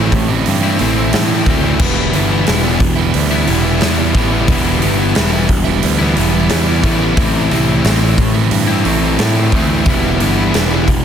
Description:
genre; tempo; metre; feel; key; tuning
quiet-loud alternative rock; 89 BPM; 4/4; straight; E minor; A4 = 440 Hz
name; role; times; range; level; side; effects
crunchy overdriven guitar; riff; 0.0-10.9 s; A2 to E4; -19 LUFS; left 9 dB; none
fuzz guitar; riff; 0.0-11.0 s; A2 to E4; -19 LUFS; equal; distortion
overdriven electric guitar; riff; 0.0-10.9 s; A2 to E4; -19 LUFS; right 10 dB; none
overdriven picked electric bass; bass; 0.0-11.0 s; E1 to A2; -17 LUFS; equal; none
huge arena drum kit; drums; 0.1-11.0 s; crash cymbal, hi-hat, kick drum, snare drum; -18 LUFS; equal; none
room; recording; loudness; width
light reverb; dense, heavily limited modern master; -11 LUFS; side -8 dB against mid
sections
0.0-11.0 A section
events
none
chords
0.0 Am; 1.8 Em; 7.2 Am; 9.9 Em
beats
0.46 1.13 | 1.80 2.47 3.14 3.82 | 4.49 5.16 5.83 6.50 | 7.18 7.85 8.52 9.19 | 9.87 10.54

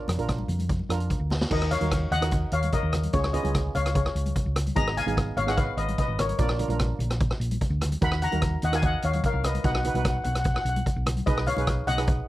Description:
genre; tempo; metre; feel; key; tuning
calypso; 148 BPM; 4/4; straight; Eb minor; A4 = 440 Hz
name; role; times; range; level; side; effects
steel pan; melody; 0.0-12.3 s; Ab4 to Cb6; -29 LUFS; left 3 dB; none
steel pan; accompaniment; 0.0-12.3 s; Cb4 to B4; -34 LUFS; right 7 dB; none
hollow-body short-scale fingered electric bass; bass; 0.1-12.2 s; Ab1 to F2; -27 LUFS; equal; none
street-band drum kit; drums; 0.1-12.2 s; crash cymbal, hi-hat, kick drum, rim click, snare drum; -28 LUFS; equal; none
congas; percussion; 0.1-12.0 s; none; -37 LUFS; left 2 dB; none
room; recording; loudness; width
little or no reverb; dry, close 1970s-style studio recording; -23 LUFS; side -16 dB against mid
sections
0.0-1.5 A section; 1.5-12.3 B section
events
drum fill 1.3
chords
0.0 Bb; 1.5 Ebmadd9; 3.1 Dbadd9; 4.8 Abm; 6.4 Bb; 8.0 Ebmadd9; 9.6 B; 11.3 Abm7/Cb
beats
0.29 0.69 1.10 | 1.51 1.92 2.32 2.73 | 3.14 3.54 3.95 4.36 | 4.76 5.17 5.58 5.98 | 6.39 6.80 7.20 7.61 | 8.02 8.42 8.83 9.24 | 9.64 10.05 10.46 10.86 | 11.27 11.67 12.08

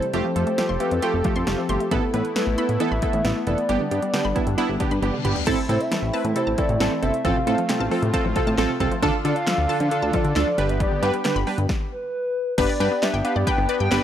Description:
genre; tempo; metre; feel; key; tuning
synth-pop; 135 BPM; 4/4; straight; unclear; A4 = 440 Hz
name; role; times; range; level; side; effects
hollow clarinet-like synth lead; melody; 0.0-14.0 s; G4 to G5; -27 LUFS; equal; chorus
warm analog keys; accompaniment; 0.0-14.0 s; A3 to B4; -25 LUFS; right 2 dB; chorus
warm analog pad; sustained chords; 0.0-14.0 s; C3 to A4; -28 LUFS; left 1 dB; chorus, tremolo
punchy analog drum machine; drums; 0.0-14.0 s; crash cymbal, handclaps, hi-hat, kick drum, snare drum, toms; -27 LUFS; equal; overdrive
resonant blip pluck; arpeggios; 0.1-14.0 s; C3 to C6; -30 LUFS; left 2 dB; chorus, analog delay
chorused synth bass; bass; 0.1-14.0 s; F1 to D3; -24 LUFS; equal; none
reverse cymbal; sound effects; 4.8-5.5 s; none; -34 LUFS; left 7 dB; none
room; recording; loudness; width
light reverb; dry, gritty hardware recording, transformer saturation; -20 LUFS; side -10 dB against mid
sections
0.0-5.5 A section; 5.5-12.6 B section; 12.6-14.0 C section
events
reverse cymbal 4.8-5.5; drum fill 5.0-5.5; stop 11.7-12.6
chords
0.1 Fadd9; 1.9 Asus2; 3.7 G; 5.5 Am; 7.2 F/A; 9.0 Dm; 10.6 G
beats
| 0.14 0.58 1.02 1.47 | 1.91 2.36 2.80 3.25 | 3.69 4.14 4.58 5.03 | 5.47 5.91 6.36 6.80 | 7.25 7.69 8.14 8.58 | 9.03 9.47 9.91 10.36 | 10.80 11.25 11.69 12.14 | 12.58 13.03 13.47 13.91

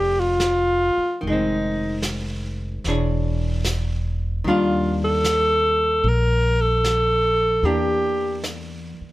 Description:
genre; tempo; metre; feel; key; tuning
jazz ballad; 74 BPM; 4/4; swing 69% on 8ths; unclear; A4 = 442 Hz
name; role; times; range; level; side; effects
warm alto saxophone; melody; 0.0-8.5 s; Eb4 to Bb4; -20 LUFS; equal; none
archtop guitar, miked and amplified; accompaniment; 0.0-9.1 s; Eb3 to C#5; -26 LUFS; left 1 dB; none
upright bass; bass; 0.0-9.0 s; E1 to E2; -24 LUFS; equal; none
vintage brush drum kit; drums; 0.4-9.1 s; brushed snare drum, hi-hat, snare drum; -31 LUFS; right 1 dB; none
room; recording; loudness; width
light reverb; none; -19 LUFS; side -17 dB against mid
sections
0.0-9.1 A section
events
none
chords
0.0 Bbmaj7 (rootless); 1.2 Fm7; 2.8 E6; 4.4 Ebmaj9; 7.6 Em7b5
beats
0.40 | 1.21 2.02 2.83 3.63 | 4.43 5.23 6.04 6.84 | 7.64 8.45

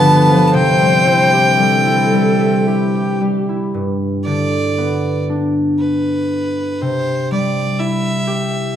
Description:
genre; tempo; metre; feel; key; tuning
celtic folk, Celtic slow air; 55-63 BPM; 3/4; rubato; G mixolydian; A4 = 440 Hz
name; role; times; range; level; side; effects
bright fiddle; melody; 0.0-8.8 s; B4 to A5; -17 LUFS; equal; none
dark viola; second line; 0.0-3.7 s; G4 to C5; -20 LUFS; left 2 dB; none
concert harp; accompaniment; 0.0-8.8 s; G2 to E5; -16 LUFS; equal; none
warm brass ensemble; sustained chords; 0.0-3.7 s; G2 to C4; -23 LUFS; equal; none
room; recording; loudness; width
wet recital hall reverb, RT60 1.4 s; dark, warm production; -13 LUFS; side -10 dB against mid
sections
0.0-3.7 A section; 3.7-8.8 B section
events
none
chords
0.0 G7; 0.5 Cadd9; 3.7 G; 6.8 C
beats
| 0.55 1.59 2.67 | 3.73 4.77 5.79 | 6.80 7.79 8.75

